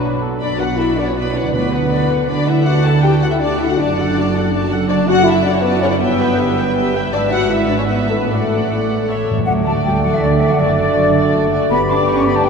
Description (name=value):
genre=quick classical-period movement for symphony orchestra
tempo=160 BPM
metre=3/4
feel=straight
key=B minor, D major from 4.9 s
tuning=A4 = 441 Hz
part: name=dark clarinet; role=second line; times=0.0-0.2, 9.5-12.5 s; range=D4 to A4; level=-26 LUFS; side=left 3 dB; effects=none
part: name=dark studio violin section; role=second line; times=0.0-12.5 s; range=D4 to A5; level=-24 LUFS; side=left 3 dB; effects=none
part: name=flute section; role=second line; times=0.0-0.2, 9.5-12.5 s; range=D5 to D6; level=-20 LUFS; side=left 3 dB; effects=none
part: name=mellow cor anglais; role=second line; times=0.0-0.4, 9.5-12.5 s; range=A4 to D5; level=-27 LUFS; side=equal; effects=none
part: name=mellow bassoon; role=accompaniment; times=0.0-0.2, 9.5-12.5 s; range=F#3 to B3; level=-23 LUFS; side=right 3 dB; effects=none
part: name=rich studio viola section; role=accompaniment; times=0.0-12.5 s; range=F#3 to G5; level=-24 LUFS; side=equal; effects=none
part: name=warm French horn section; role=sustained chords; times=0.0-12.5 s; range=A3 to A4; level=-19 LUFS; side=left 3 dB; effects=none
part: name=warm studio cello section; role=bass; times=0.0-12.5 s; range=F#2 to D4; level=-20 LUFS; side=right 3 dB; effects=none
part: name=warm studio double bass section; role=bass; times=0.0-12.5 s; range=F#1 to D2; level=-23 LUFS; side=right 3 dB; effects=none
part: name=rich studio violin section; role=melody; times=0.4-12.5 s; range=D5 to B5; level=-29 LUFS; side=left 3 dB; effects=none
part: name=timpani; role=percussion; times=1.5-2.1, 9.1-9.5 s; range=A2 to D3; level=-28 LUFS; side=equal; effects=none
room=wet cathedral reverb, RT60 5.4 s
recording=dark, warm production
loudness=-13 LUFS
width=side -5 dB against mid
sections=0.4-9.5 A section; 9.5-12.5 B section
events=timpani fill 9.1-9.5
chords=0.4 Bm; 1.5 Bm/D; 2.7 D; 3.8 D/F#; 6.0 Em/G; 7.1 E/G#; 8.3 D/A; 9.1 A; 9.5 D; 10.6 D/F#; 11.7 G